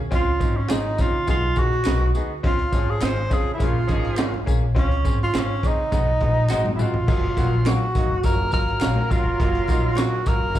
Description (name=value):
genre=uptempo 1960s-style soul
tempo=104 BPM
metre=4/4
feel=straight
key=unclear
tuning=A4 = 441 Hz
part: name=upright bass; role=bass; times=0.0-10.6 s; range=Gb1 to Db3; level=-24 LUFS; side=equal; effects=none
part: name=breathy tenor saxophone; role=melody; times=0.1-10.6 s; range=Db4 to C5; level=-25 LUFS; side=right 2 dB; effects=slapback echo
part: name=bright upright piano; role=accompaniment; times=0.1-10.6 s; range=Gb3 to Bb4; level=-30 LUFS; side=left 3 dB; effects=slapback echo
part: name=crunchy breakbeat drum kit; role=drums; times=0.1-10.6 s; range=crash cymbal, hi-hat, kick drum, snare drum, toms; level=-24 LUFS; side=equal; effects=none
part: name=tambourine and handclaps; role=percussion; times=0.1-10.6 s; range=none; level=-39 LUFS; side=left 2 dB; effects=none
part: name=congas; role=percussion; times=0.4-10.6 s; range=none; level=-38 LUFS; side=right 3 dB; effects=none
part: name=clean electric guitar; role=stabs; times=0.7-10.1 s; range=Db4 to Db5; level=-34 LUFS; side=right 9 dB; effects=lush chorus, slapback echo
part: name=mellow horn section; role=second line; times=2.7-4.4, 8.2-10.6 s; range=Db3 to C5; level=-33 LUFS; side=right 3 dB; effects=slapback echo
room=small room ambience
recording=live gig heard through the venue's PA, club reverb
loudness=-19 LUFS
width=side -12 dB against mid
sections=0.0-7.1 A section; 7.1-10.6 B section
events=drum fill 6.5-7.1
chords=0.1 Dbmaj7; 1.3 Cb6; 2.4 Dbmaj7; 3.6 Bbm7; 4.8 Dbmaj7; 5.9 Cb6; 6.5 Ab7; 7.1 Gbmaj7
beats=| 0.12 0.70 1.28 1.86 | 2.44 3.02 3.60 4.18 | 4.76 5.34 5.92 6.50 | 7.08 7.66 8.24 8.82 | 9.40 9.97 10.55